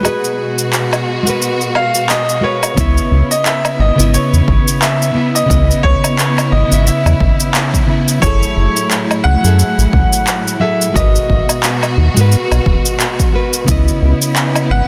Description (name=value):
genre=sunset chillout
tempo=88 BPM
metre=4/4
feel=swing 57% on 16ths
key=C# minor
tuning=A4 = 438 Hz
part: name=clear concert grand piano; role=melody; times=0.0-14.9 s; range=B4 to F#5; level=-21 LUFS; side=equal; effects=tape echo
part: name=nylon-string guitar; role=accompaniment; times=0.0-14.9 s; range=C#3 to E5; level=-20 LUFS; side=equal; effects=delay
part: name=warm studio string section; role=sustained chords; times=0.0-14.9 s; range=A2 to F#4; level=-24 LUFS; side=equal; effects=none
part: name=electronic woodblock, cabasa and handclaps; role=drums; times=0.0-14.7 s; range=none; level=-20 LUFS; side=equal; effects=overdrive
part: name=round analog bass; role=bass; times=2.8-14.8 s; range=D#1 to G#2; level=-14 LUFS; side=equal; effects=none
part: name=electronic kick drum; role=drums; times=2.8-13.8 s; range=none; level=-18 LUFS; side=equal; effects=overdrive
room=light reverb, small room ambience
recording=dense, heavily limited modern master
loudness=-13 LUFS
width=mono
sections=0.0-2.8 A section; 2.8-14.9 B section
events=break 0.0-2.8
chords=0.0 G#m9; 2.8 C#m9; 8.2 F#m9; 11.0 G#m9; 13.7 C#m9